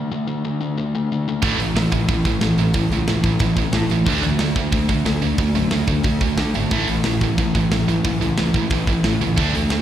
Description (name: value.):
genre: punk rock.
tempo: 181 BPM.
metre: 4/4.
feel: straight.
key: unclear.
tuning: A4 = 441 Hz.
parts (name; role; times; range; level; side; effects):
sludgy distorted guitar; riff; 0.0-9.8 s; A2 to D4; -22 LUFS; left 4 dB; overdrive.
tight distorted guitar; riff; 1.4-9.8 s; A2 to D4; -23 LUFS; right 10 dB; distortion, slapback echo.
fuzz picked electric bass; bass; 1.4-9.8 s; G#1 to D3; -23 LUFS; right 1 dB; overdrive.
tight metal drum kit; drums; 1.4-9.8 s; hi-hat, kick drum, snare drum; -23 LUFS; equal; none.
room: studio reverb.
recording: live gig heard through the venue's PA, recital hall reverb.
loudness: -17 LUFS.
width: side -11 dB against mid.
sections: 0.0-9.8 A section.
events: none.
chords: 0.0 D5; 1.4 A5; 4.1 D5; 6.7 A5.